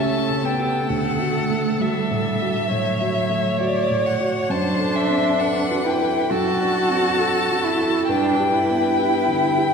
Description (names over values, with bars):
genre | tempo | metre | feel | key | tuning
classical, slow romantic movement for piano quartet | 67 BPM | 4/4 | rubato | D major | A4 = 440 Hz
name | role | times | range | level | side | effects
rich violin | melody | 0.0-9.7 s | D5 to A5 | -23 LUFS | left 4 dB | none
rich cello | second line | 0.0-9.7 s | F#3 to F#4 | -22 LUFS | right 2 dB | none
dark concert grand piano | accompaniment | 0.0-9.7 s | C#2 to A4 | -25 LUFS | equal | none
rich viola | accompaniment | 0.0-9.7 s | A4 to C#5 | -27 LUFS | right 2 dB | none
room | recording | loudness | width
wet church reverb, RT60 3.2 s | recorded in a church or concert hall | -18 LUFS | side -6 dB against mid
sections
0.0-9.7 A section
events
none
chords
0.0 A7/C#; 0.9 D; 4.5 D7/F#; 8.1 G